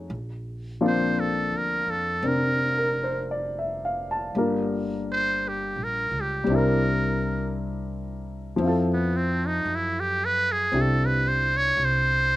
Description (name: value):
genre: jazz ballad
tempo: 56 BPM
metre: 4/4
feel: swing 66% on 8ths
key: unclear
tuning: A4 = 440 Hz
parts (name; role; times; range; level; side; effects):
- warm baby grand piano; accompaniment; 0.0-12.4 s; F3 to A5; -26 LUFS; left 2 dB; slapback echo
- upright bass; bass; 0.0-12.4 s; F1 to F#2; -30 LUFS; right 1 dB; none
- trumpet with metal mute; melody; 0.9-12.4 s; B3 to Db5; -24 LUFS; right 1 dB; slapback echo
room: little or no reverb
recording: recorded outdoors, with no room sound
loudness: -22 LUFS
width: side -16 dB against mid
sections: 0.0-12.4 A section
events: muted trumpet solo 0.0-12.4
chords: 0.1 Bbadd9; 4.4 Gm7; 6.5 C9; 8.6 Fmaj9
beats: | 0.10 1.17 2.23 3.29 | 4.35 5.41 6.47 7.54 | 8.60 9.66 10.72 11.79